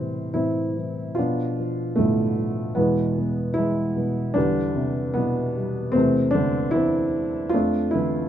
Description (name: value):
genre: classical, lyrical solo piano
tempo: 72-77 BPM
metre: 4/4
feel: rubato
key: A minor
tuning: A4 = 436 Hz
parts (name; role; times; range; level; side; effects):
- dark upright piano; solo; 0.0-8.3 s; E2 to F4; -21 LUFS; equal; none
room: light reverb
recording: dark, warm production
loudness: -21 LUFS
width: side -10 dB against mid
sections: 0.0-8.3 A section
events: none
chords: 0.0 Am7; 1.2 Bdim; 2.8 E; 4.4 C/E; 5.9 Am/E; 7.5 Dm/F